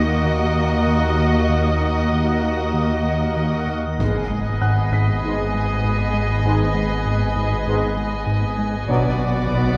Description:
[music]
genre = cinematic, suspense film score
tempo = 98 BPM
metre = 4/4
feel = straight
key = G# minor from 4.0 s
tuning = A4 = 441 Hz
[part]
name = muted studio violin section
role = melody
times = 0.0-9.8 s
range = D5 to D#5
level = -30 LUFS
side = equal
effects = none
[part]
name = muted chamber violin section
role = second line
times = 0.0-9.8 s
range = F#4 to G#4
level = -33 LUFS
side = equal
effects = none
[part]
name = muted symphonic viola section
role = accompaniment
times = 0.0-9.8 s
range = A#3 to B3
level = -33 LUFS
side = equal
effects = none
[part]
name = drifting glass-harmonics texture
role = sustained chords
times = 0.0-9.8 s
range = A#4 to G#5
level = -31 LUFS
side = equal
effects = chorus, built-in reverb
[part]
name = mellow French horn section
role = sustained chords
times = 0.0-9.1 s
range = A#3 to F#4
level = -32 LUFS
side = equal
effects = none
[part]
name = round analog bass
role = riff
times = 0.0-9.7 s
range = G#2 to D#4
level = -27 LUFS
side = equal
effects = none
[part]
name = muted symphonic cello section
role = bass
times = 0.0-9.8 s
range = D#2 to B2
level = -27 LUFS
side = equal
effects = none
[part]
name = muted symphonic double bass section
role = bass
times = 0.0-9.8 s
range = G#1 to D#2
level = -29 LUFS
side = equal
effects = none
[part]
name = warm sub bass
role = drone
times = 0.0-9.8 s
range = G#1 to D#2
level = -30 LUFS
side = equal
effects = none
[part]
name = dark concert grand piano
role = texture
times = 0.0-8.9 s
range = F#5 to C7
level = -36 LUFS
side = equal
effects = none
[part]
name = clear trombone section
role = sustained chords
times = 4.0-9.1 s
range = G#2 to G#3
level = -31 LUFS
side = equal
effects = none
[part]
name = impact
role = sound effects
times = 4.0-6.4 s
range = none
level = -32 LUFS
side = equal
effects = none
[sound]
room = moderate scoring stage reverb, RT60 1.8 s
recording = none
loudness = -20 LUFS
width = mono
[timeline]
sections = 0.0-4.0 A section; 4.0-9.8 B section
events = impact 4.0-6.5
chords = 0.0 D#m; 4.0 G#m; 8.9 Bm

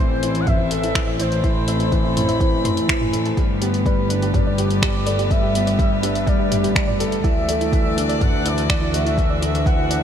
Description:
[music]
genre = piano and strings electronica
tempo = 124 BPM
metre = 4/4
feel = straight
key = G major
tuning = A4 = 442 Hz
[part]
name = warm velvety synth lead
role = melody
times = 0.0-10.0 s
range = B4 to F#5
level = -26 LUFS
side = equal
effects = chorus, analog delay
[part]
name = warm string quartet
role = sustained chords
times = 0.0-10.0 s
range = D3 to B5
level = -28 LUFS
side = left 1 dB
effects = sidechain pumping
[part]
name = soft round pluck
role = arpeggios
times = 0.0-10.0 s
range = E4 to C6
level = -31 LUFS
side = right 3 dB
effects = none
[part]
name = dark upright piano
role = riff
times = 0.0-10.0 s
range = E3 to C5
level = -24 LUFS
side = left 2 dB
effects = analog delay
[part]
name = dark studio double bass section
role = bass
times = 0.0-10.0 s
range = G1 to D2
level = -24 LUFS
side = right 1 dB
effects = sidechain pumping
[part]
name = deep house drum kit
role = drums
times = 0.2-10.0 s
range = finger snaps, hi-hat, toms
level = -26 LUFS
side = right 1 dB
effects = overdrive
[part]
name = electronic kick drum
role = drums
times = 0.5-9.8 s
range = none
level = -20 LUFS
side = equal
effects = overdrive
[sound]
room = moderate cathedral reverb, RT60 6.1 s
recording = dreamy mix soaked in reverb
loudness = -17 LUFS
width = side -9 dB against mid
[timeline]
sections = 0.0-10.0 A section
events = none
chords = 0.0 Am; 3.4 Gadd9; 7.2 Dadd9

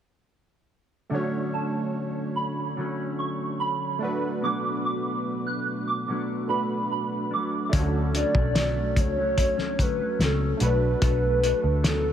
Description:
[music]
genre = indie pop, bedroom pop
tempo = 73 BPM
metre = 4/4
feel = straight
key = D major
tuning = A4 = 438 Hz
[part]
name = mellow electric guitar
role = accompaniment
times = 1.1-12.1 s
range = B2 to A4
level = -30 LUFS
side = left 2 dB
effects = lush chorus, vibrato effect
[part]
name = warm analog keys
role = accompaniment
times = 1.1-12.1 s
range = A3 to C#5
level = -32 LUFS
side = right 4 dB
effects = chorus
[part]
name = soft synth bell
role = second line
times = 1.5-7.5 s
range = A5 to F#6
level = -30 LUFS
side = right 4 dB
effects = ensemble chorus, ping-pong delay
[part]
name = vintage muted picked electric bass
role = bass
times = 7.7-12.1 s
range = B1 to D2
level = -26 LUFS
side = equal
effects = none
[part]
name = cloth-damped thuddy drum kit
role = drums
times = 7.7-12.0 s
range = hi-hat, kick drum, snare drum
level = -25 LUFS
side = left 1 dB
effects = none
[part]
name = hollow clarinet-like synth lead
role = melody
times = 8.2-12.1 s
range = A4 to D5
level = -26 LUFS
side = left 1 dB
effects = analog chorus
[sound]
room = light reverb, studio ambience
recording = none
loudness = -23 LUFS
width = side -9 dB against mid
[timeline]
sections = 1.1-7.7 A section; 7.7-12.1 B section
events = none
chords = 1.1 Dmaj7; 4.0 Bm7; 7.7 Dmaj7; 10.6 Bm7

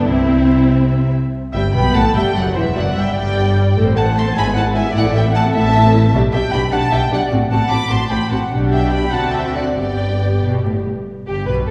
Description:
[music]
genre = quick classical-period movement for string orchestra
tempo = 90-103 BPM (dotted quarters)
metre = 6/8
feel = rubato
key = G major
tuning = A4 = 441 Hz
[part]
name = dark studio violin section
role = melody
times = 0.0-11.6 s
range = G4 to D6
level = -25 LUFS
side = equal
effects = none
[part]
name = rich studio violin section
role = second line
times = 0.0-11.7 s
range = E4 to B5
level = -25 LUFS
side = equal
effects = none
[part]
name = rich studio viola section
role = accompaniment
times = 0.0-10.9 s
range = E3 to C5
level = -22 LUFS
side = equal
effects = none
[part]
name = rich studio cello section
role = bass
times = 0.0-11.7 s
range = E2 to D3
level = -22 LUFS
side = equal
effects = none
[part]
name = rich studio double bass section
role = bass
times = 0.0-11.7 s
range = E1 to D2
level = -23 LUFS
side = equal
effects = none
[sound]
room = wet concert hall reverb, RT60 1.8 s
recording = heard from further back in the room, vinyl crackle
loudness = -16 LUFS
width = mono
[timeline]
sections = 0.0-1.3 A section; 1.3-11.1 B section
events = none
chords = 0.1 C; 1.3 G; 1.9 Emadd9 (rootless); 2.6 G5; 3.8 Am; 4.4 E/G#; 5.0 Am; 6.1 G/B; 7.3 F#dim/A; 8.5 G/B; 9.1 D7; 9.8 G

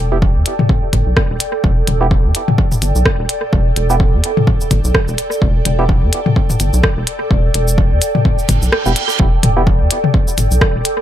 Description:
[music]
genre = minimal techno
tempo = 127 BPM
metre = 4/4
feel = swing 57% on 16ths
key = E minor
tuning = A4 = 440 Hz
[part]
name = rubbery square bass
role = bass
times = 0.0-10.8 s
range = E1 to E2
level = -16 LUFS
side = equal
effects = sidechain pumping
[part]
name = ethereal airy pad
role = texture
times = 0.0-11.0 s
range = A4 to G5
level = -21 LUFS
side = right 2 dB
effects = ensemble chorus, built-in reverb, phaser, sidechain pumping
[part]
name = percussive organ stab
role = stabs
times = 0.1-5.8, 8.9-9.6 s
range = B3 to G4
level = -22 LUFS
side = right 3 dB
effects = chorus, cassette tape, analog delay
[part]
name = electronic kick drum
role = drums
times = 0.2-10.7 s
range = none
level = -15 LUFS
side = equal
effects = none
[part]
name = minimal click drum kit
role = drums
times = 0.5-11.0 s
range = hi-hat, rim click, shaker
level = -19 LUFS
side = equal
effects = analog delay
[part]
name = electronic toms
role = percussion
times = 0.6-10.5 s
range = none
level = -18 LUFS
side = left 3 dB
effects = analog delay
[part]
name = reverse cymbal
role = sound effects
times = 8.5-9.2 s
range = none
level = -21 LUFS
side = right 8 dB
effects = none
[sound]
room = little or no reverb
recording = echo-heavy mix, faint mains hum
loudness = -12 LUFS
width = side -12 dB against mid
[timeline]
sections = 0.0-9.2 A section; 9.2-11.0 B section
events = reverse cymbal 8.5-9.2; kick drops out 8.7-9.2; drop 9.2-11.0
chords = 0.0 Em

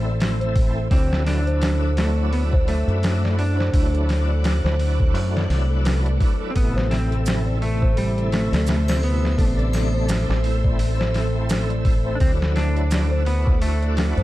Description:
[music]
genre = trip hop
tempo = 85 BPM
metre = 4/4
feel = swing 59% on 16ths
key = A dorian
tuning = A4 = 440 Hz
[part]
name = bright tonewheel organ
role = accompaniment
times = 0.0-14.2 s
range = C3 to F#4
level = -30 LUFS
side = equal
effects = overdrive, chorus vibrato, slow rotary speaker, tremolo, tape echo
[part]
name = string machine, cellos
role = sustained chords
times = 0.0-14.2 s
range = A4 to F#6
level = -32 LUFS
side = equal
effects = ensemble chorus
[part]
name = music box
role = arpeggios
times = 0.0-14.2 s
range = F#4 to D5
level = -30 LUFS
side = left 2 dB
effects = ping-pong delay
[part]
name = deep dub fingered electric bass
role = bass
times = 0.0-14.2 s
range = A1 to F#2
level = -21 LUFS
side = equal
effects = none
[part]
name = boom bap sampler-style drum kit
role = drums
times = 0.2-14.2 s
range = hi-hat, kick drum, snare drum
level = -23 LUFS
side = equal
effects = none
[part]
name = clean lap steel guitar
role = melody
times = 0.9-14.2 s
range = G3 to D4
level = -29 LUFS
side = equal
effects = tape echo
[part]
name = maracas and triangle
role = percussion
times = 7.3-13.1 s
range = none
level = -39 LUFS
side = right 3 dB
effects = none
[sound]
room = little or no reverb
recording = dark, warm production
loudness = -18 LUFS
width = side -16 dB against mid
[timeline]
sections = 0.0-14.2 A section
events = none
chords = 0.0 Am; 0.9 Dadd9; 6.6 Am; 12.2 Dadd9

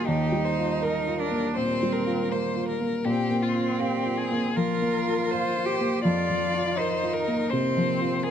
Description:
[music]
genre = neoclassical piano and strings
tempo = 81 BPM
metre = 4/4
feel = rubato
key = Eb major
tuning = A4 = 441 Hz
[part]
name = rich violin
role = melody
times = 0.0-8.3 s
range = F4 to D5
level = -29 LUFS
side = left 6 dB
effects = none
[part]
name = clear cello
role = second line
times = 0.0-8.3 s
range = Bb3 to G4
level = -29 LUFS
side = right 5 dB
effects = none
[part]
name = dark upright piano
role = accompaniment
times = 0.0-8.3 s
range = Eb2 to F5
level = -26 LUFS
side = equal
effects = none
[sound]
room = light reverb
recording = close, detailed microphones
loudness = -23 LUFS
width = side -8 dB against mid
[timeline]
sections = 0.0-8.3 A section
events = none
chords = 0.0 Ebadd9; 3.0 Bbsus2; 6.0 F7sus4

